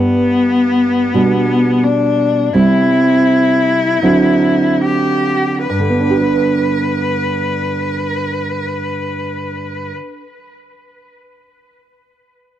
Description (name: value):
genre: romantic duo for cello and classical guitar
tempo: 34-44 BPM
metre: 4/4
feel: rubato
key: G major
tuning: A4 = 440 Hz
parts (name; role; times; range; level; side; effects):
- rich cello; melody; 0.0-9.9 s; B3 to B4; -16 LUFS; left 4 dB; none
- nylon-string guitar; accompaniment; 0.0-10.4 s; G2 to B4; -15 LUFS; right 2 dB; none
room: small room ambience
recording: dry, close 1970s-style studio recording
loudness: -12 LUFS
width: side -11 dB against mid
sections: 0.0-5.7 A section; 5.7-12.2 B section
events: slowing down 0.0-5.7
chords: 0.0 G; 1.1 G/B; 2.5 C; 4.0 D7; 5.7 G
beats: 1.14 2.54 4.02 | 5.69 7.32 8.94